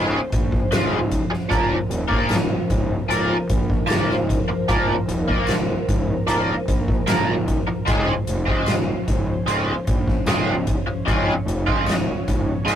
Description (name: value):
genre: psychedelic rock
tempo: 75 BPM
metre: 4/4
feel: straight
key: Db major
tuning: A4 = 441 Hz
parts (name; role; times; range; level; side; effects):
- ensemble organ-string; sustained chords; 0.0-12.8 s; F3 to Db5; -28 LUFS; left 1 dB; ensemble chorus
- biting overdriven guitar; riff; 0.0-12.8 s; Db3 to Bb4; -21 LUFS; equal; rotary speaker
- fuzz fingered electric bass; bass; 0.0-12.8 s; Db1 to Bb1; -25 LUFS; equal; overdrive
- soft-mallet drum kit; drums; 0.3-12.8 s; hi-hat, kick drum, snare drum; -22 LUFS; equal; none
- tambourine; percussion; 0.7-12.1 s; none; -41 LUFS; left 6 dB; none
room: wet booth ambience, RT60 0.2 s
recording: rough rehearsal-room recording, warm saturation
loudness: -18 LUFS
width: side -10 dB against mid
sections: 0.0-12.8 A section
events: none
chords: 0.0 Dbmaj7; 1.5 Bbsus2/Db; 7.9 Dbmaj7